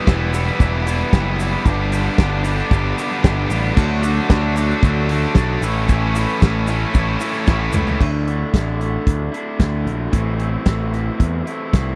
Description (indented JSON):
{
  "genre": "indie rock",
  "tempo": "113 BPM",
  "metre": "4/4",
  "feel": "straight",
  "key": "D major",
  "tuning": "A4 = 440 Hz",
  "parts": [
    { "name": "raw garage guitar", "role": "riff", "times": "0.0-12.0 s", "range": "G2 to E4", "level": "-26 LUFS", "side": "equal", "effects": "overdrive" },
    { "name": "scooped high-gain guitar", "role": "riff", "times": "0.0-8.0 s", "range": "E2 to G4", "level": "-25 LUFS", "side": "equal", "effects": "distortion, lush chorus, slapback echo" },
    { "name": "growling picked electric bass", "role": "bass", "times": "0.1-12.0 s", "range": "E1 to E2", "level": "-23 LUFS", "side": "equal", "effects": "overdrive" },
    { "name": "loose indie drum kit", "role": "drums", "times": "0.1-11.9 s", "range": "crash cymbal, hi-hat, kick drum, snare drum, toms", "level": "-18 LUFS", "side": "equal", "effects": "none" },
    { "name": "egg shaker", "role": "percussion", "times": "0.1-7.9 s", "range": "none", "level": "-43 LUFS", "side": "equal", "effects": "none" }
  ],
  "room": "little or no reverb",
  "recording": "dry, close 1970s-style studio recording",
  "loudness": "-19 LUFS",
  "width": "mono",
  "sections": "0.0-8.0 A section; 8.0-12.0 B section",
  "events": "drum fill 7.5-8.0",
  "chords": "0.0 Em; 1.6 G; 3.8 D; 5.6 A; 8.0 Dsus2; 10.1 Am"
}